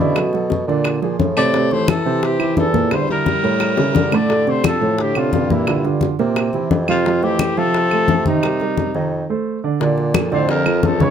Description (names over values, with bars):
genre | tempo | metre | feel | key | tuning
Afro-Cuban jazz | 174 BPM | 4/4 | straight | F major | A4 = 440 Hz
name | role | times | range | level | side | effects
mellow trumpet | melody | 0.0-11.1 s | Eb4 to D5 | -21 LUFS | left 1 dB | none
breathy baritone saxophone | second line | 0.0-11.1 s | F2 to A3 | -24 LUFS | left 6 dB | none
warm grand piano | accompaniment | 0.0-11.1 s | A2 to F5 | -20 LUFS | right 6 dB | none
mellow bassoon | bass | 0.0-11.1 s | Db2 to D3 | -22 LUFS | equal | none
bongos | percussion | 0.2-11.1 s | none | -24 LUFS | left 6 dB | none
claves | percussion | 0.2-10.8 s | none | -28 LUFS | right 5 dB | none
congas | percussion | 0.2-11.1 s | none | -22 LUFS | left 5 dB | none
room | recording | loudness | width
light reverb | close, detailed microphones | -15 LUFS | side -8 dB against mid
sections
0.0-9.8 A section; 9.8-11.1 B section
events
drum fill 3.8-4.3; break 9.1-9.8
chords
0.2 Bm7; 0.9 Bb9; 1.5 Am7; 2.9 Em7b5; 3.6 A7b9; 4.3 Dm7; 5.7 Gm7; 6.4 C7; 7.1 Fmaj7; 8.4 Cm7; 9.1 F6; 9.8 Bbmaj7